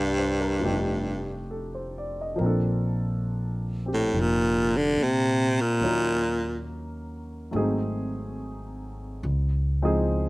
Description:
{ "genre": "jazz ballad", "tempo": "70 BPM", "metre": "4/4", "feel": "swing 68% on 8ths", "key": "unclear", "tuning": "A4 = 440 Hz", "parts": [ { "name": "growling baritone saxophone", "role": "melody", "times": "0.0-6.7 s", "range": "G2 to D3", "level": "-23 LUFS", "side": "equal", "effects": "none" }, { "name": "warm baby grand piano", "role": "accompaniment", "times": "0.0-10.3 s", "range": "F3 to F5", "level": "-31 LUFS", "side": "equal", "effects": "slapback echo" }, { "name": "upright bass", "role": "bass", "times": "0.0-10.3 s", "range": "F1 to Bb2", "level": "-28 LUFS", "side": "equal", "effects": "none" } ], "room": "little or no reverb", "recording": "recorded outdoors, with no room sound", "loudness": "-23 LUFS", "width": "side -21 dB against mid", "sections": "0.0-2.4 A section; 2.4-10.3 B section", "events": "none", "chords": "0.0 Gm7; 0.6 F13; 5.8 Ebm7; 7.5 Ab7b9; 9.2 Dbmaj9" }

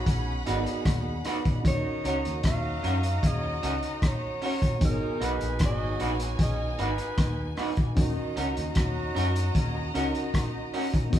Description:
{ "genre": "lovers rock reggae", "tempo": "76 BPM", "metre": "4/4", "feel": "straight", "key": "unclear", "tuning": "A4 = 435 Hz", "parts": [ { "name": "warm horn section", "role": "second line", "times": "0.0-11.2 s", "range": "C#3 to F#4", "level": "-39 LUFS", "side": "equal", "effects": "none" }, { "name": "warm symphonic violin section", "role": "second line", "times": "0.0-11.2 s", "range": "B3 to B5", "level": "-38 LUFS", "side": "right 1 dB", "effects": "none" }, { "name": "mellow tine electric piano", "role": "accompaniment", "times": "0.0-11.2 s", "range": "B3 to D#5", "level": "-35 LUFS", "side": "equal", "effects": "medium stereo tremolo, dub echo" }, { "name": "vintage muted fingered electric bass", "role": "bass", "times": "0.0-11.2 s", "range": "G#1 to F#2", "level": "-32 LUFS", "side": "equal", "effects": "none" }, { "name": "crunchy breakbeat drum kit", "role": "drums", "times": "0.1-11.2 s", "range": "hi-hat, kick drum, rim click", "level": "-27 LUFS", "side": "equal", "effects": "none" }, { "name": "electric guitar through a small old amp", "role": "stabs", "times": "0.5-11.0 s", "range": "C#4 to B4", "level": "-33 LUFS", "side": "right 1 dB", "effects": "none" }, { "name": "breathy alto saxophone", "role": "melody", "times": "1.7-7.6 s", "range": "A#4 to E#5", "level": "-34 LUFS", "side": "right 1 dB", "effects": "none" } ], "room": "moderate large studio reverb, RT60 1.2 s", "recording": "band playing live in one room", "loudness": "-25 LUFS", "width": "side -11 dB against mid", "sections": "0.0-11.2 A section", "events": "none", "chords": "0.0 G#m7; 1.6 D#m7; 4.8 G#m7; 8.0 D#m7" }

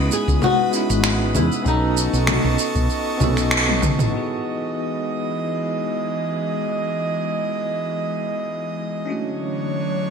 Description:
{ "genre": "sunset chillout", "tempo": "97 BPM", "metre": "4/4", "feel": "swing 54% on 16ths", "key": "E major", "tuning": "A4 = 440 Hz", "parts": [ { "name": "flamenco guitar", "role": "melody", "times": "0.0-3.5 s", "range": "D#4 to G#4", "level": "-24 LUFS", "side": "left 3 dB", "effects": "lush chorus, ping-pong delay, shimmer reverb" }, { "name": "bell-like tine electric piano", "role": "accompaniment", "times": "0.0-10.1 s", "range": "G#3 to A4", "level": "-26 LUFS", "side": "equal", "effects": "medium stereo tremolo, auto-pan, ping-pong delay, shimmer reverb" }, { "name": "airy breathy pad", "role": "sustained chords", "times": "0.0-10.1 s", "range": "D3 to D#6", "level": "-25 LUFS", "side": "right 2 dB", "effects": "chorus, shimmer reverb" }, { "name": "woody fretless electric bass", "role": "bass", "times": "0.0-4.1 s", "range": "G#1 to E2", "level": "-22 LUFS", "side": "equal", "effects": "none" }, { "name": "deep house drum kit", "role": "drums", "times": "0.1-4.1 s", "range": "congas, finger snaps, shaker, toms", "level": "-21 LUFS", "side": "equal", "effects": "low-pass filter on perc, low-pass filter on snare, low-pass filter on toms, low-pass filter on room, gated reverb" }, { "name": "electronic kick drum", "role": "drums", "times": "0.3-4.0 s", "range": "none", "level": "-24 LUFS", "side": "equal", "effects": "none" } ], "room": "wet plate reverb, RT60 1.6 s", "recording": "bright 1980s-style digital production", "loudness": "-19 LUFS", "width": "side -6 dB against mid", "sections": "0.0-4.1 A section; 4.1-10.1 B section", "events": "band accent 3.5-3.8; drum fill 3.7-4.1", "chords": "0.0 C#m9; 1.7 B9; 4.1 Emaj7; 9.1 Dmaj9" }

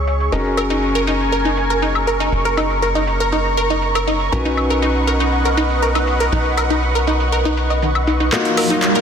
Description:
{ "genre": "progressive house", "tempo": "120 BPM", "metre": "4/4", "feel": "straight", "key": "unclear", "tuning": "A4 = 440 Hz", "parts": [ { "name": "lush unison pad", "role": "sustained chords", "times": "0.0-9.0 s", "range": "Gb3 to Db6", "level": "-21 LUFS", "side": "right 1 dB", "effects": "chorus, phaser" }, { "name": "felt-muted upright piano", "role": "stabs", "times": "0.0-9.0 s", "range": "Bb3 to Db5", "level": "-23 LUFS", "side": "left 2 dB", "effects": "low-pass filter, ping-pong delay" }, { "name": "tight sequencer bass", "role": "bass", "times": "0.0-8.3 s", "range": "Gb1 to Db2", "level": "-21 LUFS", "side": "equal", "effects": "none" }, { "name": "deep house drum kit", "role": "drums", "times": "0.1-9.0 s", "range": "handclaps, hi-hat, woodblock", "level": "-25 LUFS", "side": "left 2 dB", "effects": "overdrive, low-pass filter on hats, low-pass filter on perc, low-pass filter on snare" }, { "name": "wide unison pluck", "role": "arpeggios", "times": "0.3-9.0 s", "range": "D#3 to D#5", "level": "-20 LUFS", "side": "right 1 dB", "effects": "ping-pong delay" }, { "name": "riser", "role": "sound effects", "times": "8.5-9.0 s", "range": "none", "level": "-21 LUFS", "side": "right 3 dB", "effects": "none" } ], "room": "moderate lush hall reverb, RT60 2.0 s, digital ambience", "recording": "dense, heavily limited modern master", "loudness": "-15 LUFS", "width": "side -7 dB against mid", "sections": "0.0-8.3 A section", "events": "filter sweep on felt piano 0.0-8.3; drum fill 8.3-9.0; riser 8.5-9.0", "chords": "0.3 Gbadd9; 4.3 Badd9; 8.3 Ebmadd9" }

